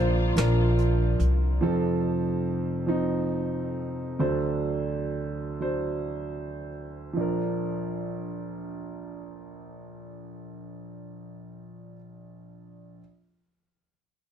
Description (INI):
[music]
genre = acoustic folk-pop ballad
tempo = 36-48 BPM (dotted quarters)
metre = 6/8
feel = straight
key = Bb major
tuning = A4 = 439 Hz
[part]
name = dark grand piano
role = melody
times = 0.0-13.0 s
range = F1 to D5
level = -28 LUFS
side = right 2 dB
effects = none
[part]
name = mellow French horn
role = second line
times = 0.0-1.2 s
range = F4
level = -33 LUFS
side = right 3 dB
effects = none
[part]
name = dark studio string section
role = sustained chords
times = 0.0-1.6 s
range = D3 to F4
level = -36 LUFS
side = left 3 dB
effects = none
[part]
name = upright bass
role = bass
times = 0.0-1.6 s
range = Bb1 to C2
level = -22 LUFS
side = left 1 dB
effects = none
[part]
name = soft brush drum kit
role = drums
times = 0.4-1.4 s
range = hi-hat, snare drum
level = -31 LUFS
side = right 1 dB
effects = none
[sound]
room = light reverb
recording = dark, warm production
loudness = -25 LUFS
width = side -9 dB against mid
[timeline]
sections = 0.0-1.6 A section; 1.6-7.2 B section; 7.2-10.5 C section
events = slowing down 1.6-7.2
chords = 0.0 Bb; 1.6 F; 4.2 D7; 7.2 Bb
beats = 0.36 | 1.61 2.88 | 4.19 5.61 | 7.17 8.83